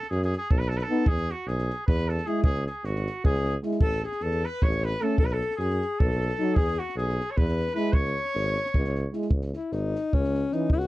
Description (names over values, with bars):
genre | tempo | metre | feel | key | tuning
balkan folk, Balkan brass band | 306 BPM (eighths) | 7/8 | straight | C# minor | A4 = 439 Hz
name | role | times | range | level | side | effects
bright trumpet | melody | 0.0-9.1 s | F#4 to C#5 | -32 LUFS | right 2 dB | none
compact cocktail drum kit | percussion | 0.0-10.9 s | kick drum, snare drum | -24 LUFS | equal | none
warm tuba | bass | 0.1-10.9 s | G#1 to F#2 | -28 LUFS | equal | none
mellow trombone | accompaniment | 0.9-10.7 s | E3 to B3 | -29 LUFS | right 5 dB | none
warm euphonium | accompaniment | 0.9-10.7 s | C#4 to E4 | -29 LUFS | left 4 dB | none
warm alto saxophone | second line | 3.2-10.9 s | C#4 to C#5 | -31 LUFS | left 4 dB | none
room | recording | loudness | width
little or no reverb | dry, close 1970s-style studio recording | -24 LUFS | side -17 dB against mid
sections
0.0-9.3 A section; 9.3-10.9 B section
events
alto saxophone solo 9.3-10.9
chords
0.0 B; 1.1 E; 2.4 C#m; 3.8 A; 5.2 B; 6.6 E; 7.9 C#m; 9.3 C#5